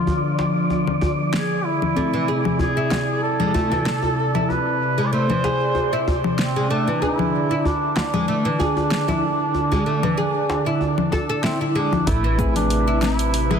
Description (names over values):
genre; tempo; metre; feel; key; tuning
organic downtempo; 95 BPM; 4/4; swing 54% on 16ths; A harmonic minor; A4 = 439 Hz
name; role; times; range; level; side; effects
warm duduk; melody; 0.0-13.6 s; C4 to D5; -24 LUFS; right 1 dB; ping-pong delay
muted felt-like synth keys; accompaniment; 0.0-13.1 s; F3 to B4; -31 LUFS; left 2 dB; chorus, sidechain pumping, digital delay
warm analog pad; sustained chords; 0.0-13.6 s; C3 to E5; -25 LUFS; right 1 dB; chorus, sidechain pumping
wind-like tuned noise texture; texture; 0.0-12.1 s; D5; -33 LUFS; right 3 dB; built-in reverb
djembe; percussion; 0.1-12.0 s; none; -27 LUFS; left 1 dB; none
deep house drum kit; drums; 0.9-13.6 s; cabasa, congas, hi-hat, snare drum; -25 LUFS; left 4 dB; overdrive, small room ambience
oud; arpeggios; 2.0-13.6 s; E3 to A4; -25 LUFS; equal; digital delay
woody FM bass; bass; 12.1-13.6 s; A1; -22 LUFS; equal; tube saturation
electronic kick drum; drums; 12.1-12.5 s; none; -24 LUFS; equal; overdrive, small room ambience
room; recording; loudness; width
moderate lush hall reverb, RT60 2.9 s; dense, heavily limited modern master; -18 LUFS; side -7 dB against mid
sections
0.0-12.1 A section; 12.1-13.6 B section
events
filter sweep on analog synth pad 0.0-12.1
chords
0.0 Bdim; 2.0 Am; 7.0 E7/D; 12.1 Amadd9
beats
0.07 0.70 1.33 | 1.97 2.60 3.23 3.86 | 4.49 5.12 5.76 6.39 | 7.02 7.65 8.28 8.91 | 9.54 10.18 10.81 11.44 | 12.07 12.70 13.34